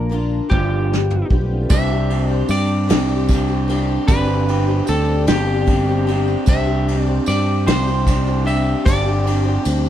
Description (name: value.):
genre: folk rock and heartland rock.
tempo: 50 BPM (dotted quarters).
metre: 6/8.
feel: straight.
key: unclear.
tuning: A4 = 440 Hz.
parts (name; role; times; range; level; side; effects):
clean electric guitar; melody; 0.0-9.9 s; G4 to E5; -25 LUFS; equal; none.
picked twelve-string acoustic guitar; accompaniment; 0.0-9.9 s; G2 to G4; -26 LUFS; left 7 dB; analog chorus.
mellow tonewheel organ; sustained chords; 0.0-9.9 s; G3 to C5; -30 LUFS; right 3 dB; none.
electric guitar through a small old amp; riff; 0.0-9.9 s; G2 to G4; -22 LUFS; right 1 dB; none.
fingered electric bass; bass; 0.0-9.9 s; G1 to G2; -19 LUFS; equal; none.
soft brush drum kit; drums; 0.1-9.8 s; crash cymbal, hi-hat, kick drum, ride cymbal, snare drum, toms; -21 LUFS; equal; none.
reed electric piano; accompaniment; 1.7-9.9 s; C4 to D5; -33 LUFS; right 8 dB; none.
tambourine; percussion; 1.7-9.9 s; none; -37 LUFS; right 12 dB; none.
room: little or no reverb.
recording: none.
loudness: -15 LUFS.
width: side -11 dB against mid.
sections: 0.0-1.7 A section; 1.7-9.9 B section.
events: drum fill 0.5-1.7.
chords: 0.0 Bb; 0.5 G7; 1.7 Csus2; 4.1 Gsus4; 6.5 Csus2; 8.9 Gsus4.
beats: 0.52 | 1.71 2.90 | 4.09 5.28 | 6.47 7.66 | 8.85.